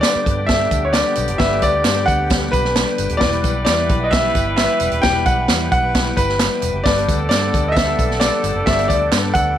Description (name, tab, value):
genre	uptempo 1960s-style soul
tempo	132 BPM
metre	4/4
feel	straight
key	G major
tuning	A4 = 440 Hz
part	bright grand piano	melody	0.0-9.6 s	B4 to G5	-19 LUFS	equal	none
part	dark upright piano	accompaniment	0.0-9.4 s	G3 to D5	-25 LUFS	left 11 dB	none
part	overdriven tonewheel organ	sustained chords	0.0-9.6 s	D3 to G4	-29 LUFS	equal	slow rotary speaker, chorus vibrato
part	swinging big-band drum kit	drums	0.0-9.5 s	hi-hat, kick drum, snare drum	-20 LUFS	right 1 dB	none
part	handclaps and tambourine	percussion	0.0-9.5 s	none	-28 LUFS	right 13 dB	none
part	vintage muted fingered electric bass	bass	0.2-9.6 s	Eb1 to G2	-23 LUFS	right 1 dB	transformer saturation
part	warm horn section	second line	0.5-9.6 s	D3 to B4	-27 LUFS	right 1 dB	none
room	moderate spring reverb, RT60 2.5 s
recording	1960s-style stereo with parts hard left and right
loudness	-14 LUFS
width	side -10 dB against mid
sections	0.0-9.6 A section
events	none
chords	0.0 G; 3.2 Em; 6.9 G